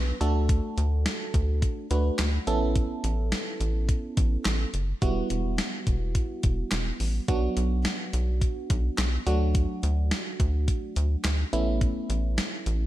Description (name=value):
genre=synth-pop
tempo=106 BPM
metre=4/4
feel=straight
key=unclear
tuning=A4 = 440 Hz
part: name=FM electric piano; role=accompaniment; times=0.0-12.9 s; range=F#3 to B4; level=-31 LUFS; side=right 2 dB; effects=chorus
part: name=rubbery square bass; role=bass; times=0.0-12.9 s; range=E1 to D2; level=-26 LUFS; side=equal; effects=none
part: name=gated 80s digital drum machine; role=drums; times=0.2-12.8 s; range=handclaps, hi-hat, kick drum, snare drum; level=-28 LUFS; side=equal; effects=gated reverb, gated reverb snare
room=light reverb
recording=none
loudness=-24 LUFS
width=side -14 dB against mid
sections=0.0-12.9 A section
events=none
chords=0.2 D; 2.5 Aadd9; 5.0 Emadd9; 7.3 Bm; 9.3 D; 11.5 Aadd9